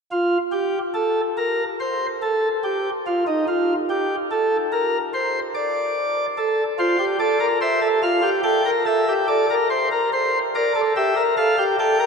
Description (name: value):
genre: classical, baroque-style 4-part fugue for pipe organ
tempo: 72 BPM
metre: 4/4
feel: straight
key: unclear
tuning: A4 = 440 Hz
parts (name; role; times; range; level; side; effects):
- chamber organ, principal chorus; solo; 0.1-12.1 s; Eb4 to G5; -18 LUFS; equal; none
room: wet cathedral reverb, RT60 6.8 s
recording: none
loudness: -19 LUFS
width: side -5 dB against mid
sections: 0.0-12.1 A section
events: none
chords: 0.0 N.C.; 6.4 F; 8.0 Gm7/F; 9.7 C7; 11.4 F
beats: 0.54 1.38 2.22 | 3.06 3.89 4.72 5.54 | 6.37 7.20 8.03 8.87 | 9.70 10.54 11.37